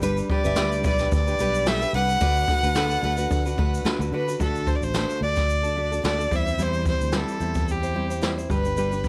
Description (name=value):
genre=acoustic pop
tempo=110 BPM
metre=4/4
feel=swing 55% on 16ths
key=unclear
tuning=A4 = 440 Hz
part: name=nylon-string guitar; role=accompaniment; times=0.0-9.1 s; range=D3 to C5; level=-31 LUFS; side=equal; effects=none
part: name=picked steel-string acoustic guitar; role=arpeggios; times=0.0-4.0 s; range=A4 to E5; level=-38 LUFS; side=equal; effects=none
part: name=sustaining fretless electric bass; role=bass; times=0.0-9.1 s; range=G1 to D3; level=-30 LUFS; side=equal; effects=none
part: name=jazz brush drum kit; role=drums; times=0.0-9.1 s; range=kick drum, shaker, snare drum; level=-29 LUFS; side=equal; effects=none
part: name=warm violin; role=melody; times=0.3-9.1 s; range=G4 to F#5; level=-28 LUFS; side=equal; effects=none
room=light reverb, small room ambience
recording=none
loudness=-24 LUFS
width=mono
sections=0.0-4.4 A section; 4.4-9.1 B section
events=none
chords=0.0 G; 2.2 D6; 4.4 D; 6.3 C; 8.5 G